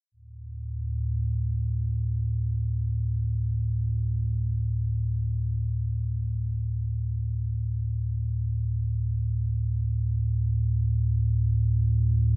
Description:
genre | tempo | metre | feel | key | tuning
ambient | free time | none | none | unclear | A4 = 445 Hz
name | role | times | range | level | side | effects
deep rumbling drone | solo | 0.3-12.4 s | D2 to A2 | -25 LUFS | equal | built-in reverb
room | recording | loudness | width
little or no reverb | none | -25 LUFS | side -23 dB against mid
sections
0.2-12.4 A section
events
none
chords
0.2 D5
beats
free time

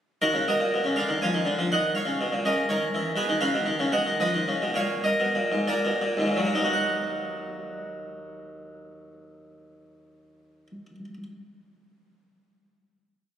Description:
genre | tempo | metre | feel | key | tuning
classical, baroque-style suite movement for harpsichord | 52-82 BPM (dotted quarters) | 6/8 | rubato | Eb minor | A4 = 440 Hz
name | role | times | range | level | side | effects
harpsichord | solo | 0.2-11.2 s | Eb2 to Ab5 | -24 LUFS | equal | none
room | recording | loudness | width
wet church reverb, RT60 3.0 s | recorded on a phone in the room, club reverb, compression | -23 LUFS | side -9 dB against mid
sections
0.2-6.8 A section; 6.8-11.2 final chord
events
slowing down 2.4-6.8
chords
0.2 Ebm; 0.9 Ddim; 1.7 Eb5; 2.4 Eb5/Db; 3.2 Abm/Cb; 3.9 B; 4.7 Eb5/Bb; 5.7 Bb7; 6.8 Ebm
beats
| 0.19 0.94 | 1.69 2.42 | 3.15 3.92 | 4.74 5.67 | 6.76 7.87 | 8.96 10.08

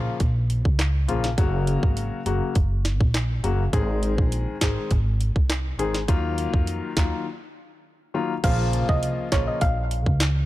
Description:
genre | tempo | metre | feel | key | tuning
dancehall | 102 BPM | 4/4 | straight | Bb minor | A4 = 440 Hz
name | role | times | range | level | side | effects
clear grand piano | accompaniment | 0.0-9.6 s | Db3 to Ab4 | -27 LUFS | left 4 dB | none
upright bass | bass | 0.0-10.5 s | Gb1 to F2 | -24 LUFS | equal | none
island pop drum kit | drums | 0.2-10.4 s | crash cymbal, handclaps, hi-hat, kick drum, rim click, snare drum | -24 LUFS | equal | none
soft round pluck | melody | 8.4-10.0 s | Db5 to F5 | -28 LUFS | right 2 dB | chorus, digital delay
room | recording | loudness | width
little or no reverb | dark, warm production | -21 LUFS | side -16 dB against mid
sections
0.0-8.4 A section; 8.4-10.5 B section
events
break 7.3-8.4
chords
0.0 Bbm; 1.4 Gb; 3.7 Ab; 6.1 Ebmadd9; 8.4 Bbm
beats
0.20 0.79 | 1.38 1.97 2.56 3.14 | 3.73 4.32 4.91 5.50 | 6.08 6.67 7.26 7.85 | 8.44 9.03 9.61 10.20

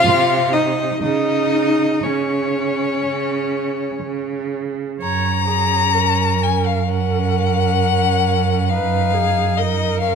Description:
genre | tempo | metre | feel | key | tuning
classical, slow romantic movement for string quartet | 59-68 BPM | 4/4 | rubato | F# major | A4 = 440 Hz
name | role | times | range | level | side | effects
rich violin | melody | 0.0-10.2 s | C#4 to A#5 | -21 LUFS | left 9 dB | none
rich violin | second line | 0.0-10.2 s | C#4 to F5 | -23 LUFS | left 3 dB | none
rich viola | accompaniment | 0.0-10.2 s | C#4 to C#5 | -24 LUFS | right 4 dB | none
rich cello | bass | 0.1-10.2 s | F#2 to C#3 | -20 LUFS | right 6 dB | none
room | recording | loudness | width
light reverb | close, detailed microphones | -16 LUFS | side -6 dB against mid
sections
0.0-5.0 A section; 5.0-10.2 B section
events
none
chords
0.0 Cmadd11; 1.0 C#sus2; 5.0 F#; 8.7 F#maj13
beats
0.07 | 1.04 2.05 3.05 4.03 | 5.00 5.95 6.88 7.79 | 8.69 9.57

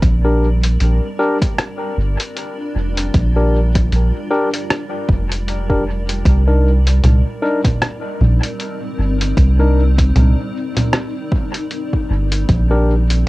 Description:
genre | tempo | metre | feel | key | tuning
ambient dub | 77 BPM | 4/4 | swing 57% on 16ths | C minor | A4 = 440 Hz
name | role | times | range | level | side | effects
granular cloud pad | sustained chords | 0.0-13.3 s | G3 to D5 | -26 LUFS | left 1 dB | built-in reverb, cassette tape, plate reverb
soft dub sub bass | bass | 0.0-13.2 s | F1 to C2 | -14 LUFS | equal | none
electronic kick drum | drums | 0.0-12.7 s | none | -17 LUFS | equal | overdrive, small room ambience, cassette tape
lo-fi sampler-style drum kit | drums | 0.0-13.2 s | congas, hi-hat, rim click | -21 LUFS | equal | small room ambience, cassette tape, dub echo
barky tine electric piano | stabs | 0.2-12.9 s | D4 to Bb4 | -21 LUFS | left 2 dB | cassette tape, dub echo, plate reverb
room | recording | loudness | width
light reverb | home recording on cassette | -14 LUFS | side -20 dB against mid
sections
0.0-13.3 A section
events
none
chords
0.0 Bb6; 6.3 Cm9; 12.5 Bb6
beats
| 0.02 0.80 1.58 2.36 | 3.14 3.92 4.70 5.48 | 6.26 7.04 7.82 8.60 | 9.37 10.15 10.93 11.71 | 12.49 13.27

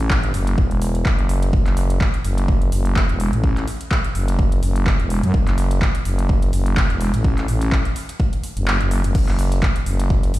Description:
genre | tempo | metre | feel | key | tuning
bass house | 126 BPM | 4/4 | swing 55% on 16ths | unclear | A4 = 440 Hz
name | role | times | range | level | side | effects
growling FM bass | bass | 0.0-10.4 s | E1 to F#2 | -19 LUFS | equal | tube saturation, sidechain pumping
big-room dance drum kit | drums | 0.0-10.4 s | crash cymbal, handclaps, hi-hat | -27 LUFS | equal | overdrive, studio reverb
electronic kick drum | drums | 0.1-10.2 s | none | -19 LUFS | equal | studio reverb
room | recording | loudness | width
little or no reverb | played on a big sound system in a bare room, stone room reverb | -17 LUFS | side -16 dB against mid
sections
0.0-10.4 A section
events
kick drops out 8.7-9.2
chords
none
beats
0.10 0.58 1.05 | 1.53 2.01 2.48 2.96 | 3.44 3.91 4.39 4.86 | 5.34 5.82 6.29 6.77 | 7.25 7.72 8.20 8.67 | 9.15 9.63 10.10

